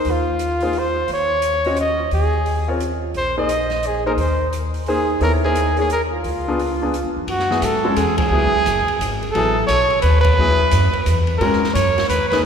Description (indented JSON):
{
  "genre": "modal jazz",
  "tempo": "174 BPM",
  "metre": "3/4",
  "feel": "swing 63% on 8ths",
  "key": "F# dorian from 7.3 s",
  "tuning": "A4 = 441 Hz",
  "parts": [
    { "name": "warm trumpet", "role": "melody", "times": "0.0-12.4 s", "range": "F4 to Eb5", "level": "-19 LUFS", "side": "right 1 dB", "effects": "none" },
    { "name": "clear concert grand piano", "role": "accompaniment", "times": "0.0-12.4 s", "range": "F#3 to Eb5", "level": "-23 LUFS", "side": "left 2 dB", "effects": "none" },
    { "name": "open jazz drum kit", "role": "drums", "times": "0.0-12.4 s", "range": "hi-hat, kick drum, ride cymbal, snare drum", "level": "-29 LUFS", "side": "right 1 dB", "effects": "none" },
    { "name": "upright bass", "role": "bass", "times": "0.1-12.5 s", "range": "F#1 to G#2", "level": "-21 LUFS", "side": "equal", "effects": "none" }
  ],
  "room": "wet church reverb, RT60 3.0 s",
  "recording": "recorded in a church or concert hall",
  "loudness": "-16 LUFS",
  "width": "side -7 dB against mid",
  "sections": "0.0-7.3 A section; 7.3-12.5 B section",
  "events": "band accent 8.1, 10.2",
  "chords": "0.0 Ebsus4; 6.3 Db7b9; 7.3 F#9sus4; 11.4 G#m11",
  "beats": "| 0.05 0.40 0.74 | 1.09 1.43 1.77 | 2.12 2.46 2.81 | 3.15 3.50 3.84 | 4.19 4.53 4.87 | 5.22 5.56 5.91 | 6.25 6.60 6.94 | 7.28 7.63 7.97 | 8.32 8.66 9.00 | 9.35 9.69 10.04 | 10.38 10.72 11.07 | 11.41 11.76 12.10 | 12.45"
}